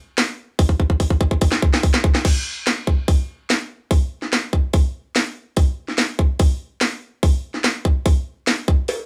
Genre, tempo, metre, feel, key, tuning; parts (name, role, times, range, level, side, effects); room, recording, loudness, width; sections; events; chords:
rock; 144 BPM; 4/4; straight
garage drum kit; drums; 0.2-9.0 s; crash cymbal, hi-hat, kick drum, snare drum; -19 LUFS; equal
cowbell; percussion; 8.9-9.0 s; -26 LUFS; equal
light reverb; band playing live in one room; -20 LUFS; mono
0.0-2.2 A section; 2.2-9.1 B section
drum fill 0.6-2.2